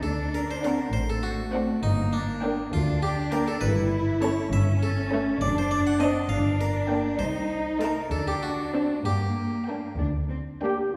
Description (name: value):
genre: cinematic, playful, whimsical film cue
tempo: 67 BPM (dotted quarters)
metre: 6/8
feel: straight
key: G minor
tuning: A4 = 439 Hz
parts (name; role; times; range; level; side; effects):
- harpsichord; melody; 0.0-10.0 s; D4 to F#5; -34 LUFS; equal; none
- rich studio cello section; bass; 0.0-10.7 s; A3 to E4; -31 LUFS; equal; none
- rich studio double bass section; bass; 0.0-11.0 s; F#1 to G2; -30 LUFS; equal; none
- clear studio violin section; second line; 0.6-10.9 s; C#4 to Eb4; -36 LUFS; equal; none
- rich studio viola section; accompaniment; 0.6-10.9 s; A3 to C4; -37 LUFS; equal; none
- clear studio violin section; melody; 0.7-10.9 s; F#5 to A5; -43 LUFS; equal; none
- bright clarinet; second line; 10.6-10.8 s; G4; -32 LUFS; equal; none
- mellow concert flute; second line; 10.6-11.0 s; F4 to G4; -30 LUFS; equal; none
room: wet scoring stage reverb, RT60 1.8 s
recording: heard from further back in the room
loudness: -26 LUFS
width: mono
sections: 0.0-10.9 A section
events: none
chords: 0.0 D7; 1.8 Gm; 3.6 A7/G; 5.4 D7/F#; 6.3 Gm; 7.2 Adim/C; 8.1 D7; 9.1 Gm